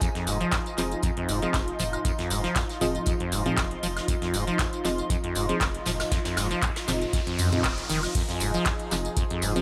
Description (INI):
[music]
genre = acid house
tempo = 118 BPM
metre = 4/4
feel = swing 54% on 16ths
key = F minor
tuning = A4 = 442 Hz
[part]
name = lush unison pad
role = sustained chords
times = 0.0-9.6 s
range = F3 to Ab4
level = -37 LUFS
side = equal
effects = chorus, phaser, sidechain pumping
[part]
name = acid bass, saw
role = riff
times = 0.0-9.6 s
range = F1 to F3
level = -33 LUFS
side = equal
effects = tube saturation, lush chorus, digital delay
[part]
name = booming analog drum machine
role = drums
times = 0.0-9.6 s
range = crash cymbal, handclaps, hi-hat, tambourine, toms, woodblock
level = -34 LUFS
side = equal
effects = none
[part]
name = electronic kick drum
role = drums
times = 0.0-9.3 s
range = none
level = -31 LUFS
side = equal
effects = none
[part]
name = jazz brush drum kit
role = drums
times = 0.0-9.6 s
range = hi-hat, snare drum, tambourine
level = -41 LUFS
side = equal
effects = sidechain pumping on hats, high-pass filter on hats, high-pass filter on snare, sidechain pumping on perc, high-pass filter on perc, high-pass filter on room
[part]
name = granular cloud pad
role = texture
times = 0.0-9.6 s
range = F4 to C6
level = -37 LUFS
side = equal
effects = built-in reverb, sidechain pumping
[part]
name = warm sub bass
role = bass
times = 0.3-9.6 s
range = F1 to F2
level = -35 LUFS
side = equal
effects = tube saturation, sidechain pumping
[part]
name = deep mellow chord stab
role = stabs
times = 0.8-9.6 s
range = C4 to Eb5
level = -35 LUFS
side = equal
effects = chorus, phaser, digital delay
[part]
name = riser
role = sound effects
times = 5.5-8.2 s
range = none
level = -41 LUFS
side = equal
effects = none
[sound]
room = light reverb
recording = none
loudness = -27 LUFS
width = mono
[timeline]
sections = 0.0-8.2 A section; 8.2-9.6 B section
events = riser 5.5-8.2; band accent 7.6; drop 8.2-9.6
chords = 0.0 Fm7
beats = | 0.01 0.52 1.03 1.54 | 2.05 2.56 3.07 3.57 | 4.08 4.59 5.10 5.61 | 6.12 6.62 7.13 7.64 | 8.15 8.66 9.17